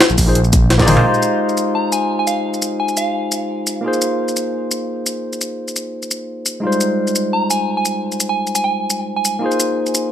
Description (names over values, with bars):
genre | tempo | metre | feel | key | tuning
liquid drum and bass | 172 BPM | 4/4 | straight | F minor | A4 = 440 Hz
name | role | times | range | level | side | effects
jungle sampler-style drum kit | drums | 0.0-10.0 s | hi-hat, shaker, snare drum, toms | -17 LUFS | left 1 dB | overdrive, studio ambience
smooth gliding synth bass | bass | 0.1-1.0 s | Bb1 | -15 LUFS | equal | none
electronic kick drum | drums | 0.2-0.9 s | none | -16 LUFS | equal | studio ambience
barky tine electric piano | accompaniment | 0.3-10.1 s | G3 to D5 | -19 LUFS | left 1 dB | overdrive, vintage 12-bit sampler grit, tape echo
soft synth bell | melody | 1.8-3.3, 7.3-9.5 s | F5 to Bb5 | -21 LUFS | right 1 dB | chorus, tape echo
room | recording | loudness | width
light reverb | none | -15 LUFS | side -10 dB against mid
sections
0.0-1.1 A section; 1.1-10.1 B section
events
drop 0.0-1.1; drum fill 0.7-1.1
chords
0.0 Bb9sus4; 1.1 Fm7; 3.8 Bb9sus4; 6.6 Fm7; 9.4 Bb9sus4